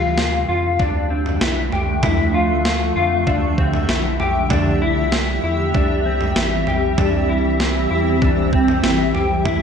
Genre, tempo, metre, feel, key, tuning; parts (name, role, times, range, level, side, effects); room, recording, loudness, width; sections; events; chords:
dream pop; 97 BPM; 4/4; straight; A4 = 440 Hz
granular cloud pad; sustained chords; 0.0-9.6 s; D3 to E5; -20 LUFS; equal; built-in reverb, wide subtle chorus
mellow electric guitar; arpeggios; 0.0-9.6 s; C4 to G4; -21 LUFS; left 4 dB; ensemble chorus, digital delay
round analog bass; bass; 0.0-9.6 s; A1 to F2; -23 LUFS; equal
gated 80s digital drum machine; drums; 0.2-9.6 s; kick drum, snare drum, toms; -22 LUFS; right 1 dB; gated reverb, gated reverb snare
moderate plate reverb, RT60 2.0 s; bright 1980s-style digital production; -16 LUFS; side -7 dB against mid
0.0-9.6 A section
0.0 Dmadd9; 4.5 C